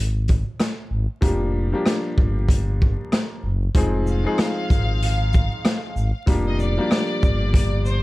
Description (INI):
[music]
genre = hip hop, boom-bap hip-hop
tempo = 95 BPM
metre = 4/4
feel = swing 63% on 16ths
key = F dorian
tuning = A4 = 444 Hz
[part]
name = growling FM bass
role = bass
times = 0.0-8.0 s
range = F1 to Ab1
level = -22 LUFS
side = equal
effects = none
[part]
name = raw garage drum kit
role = drums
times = 0.3-8.0 s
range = hi-hat, kick drum, rim click, shaker, snare drum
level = -21 LUFS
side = equal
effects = none
[part]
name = dark grand piano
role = accompaniment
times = 1.2-8.0 s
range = F3 to Ab4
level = -26 LUFS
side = left 2 dB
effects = cassette tape, high-pass filter, low-pass filter
[part]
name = bright studio violin section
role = melody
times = 4.1-8.0 s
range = C5 to F5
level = -29 LUFS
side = equal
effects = high-pass filter, low-pass filter, analog delay
[sound]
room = little or no reverb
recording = vinyl crackle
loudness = -19 LUFS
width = side -19 dB against mid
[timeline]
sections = 0.0-3.8 A section; 3.8-8.0 B section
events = break 0.0-1.2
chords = 0.0 N.C.; 1.2 Gm7/F; 3.8 Fm7; 6.3 Gm7/F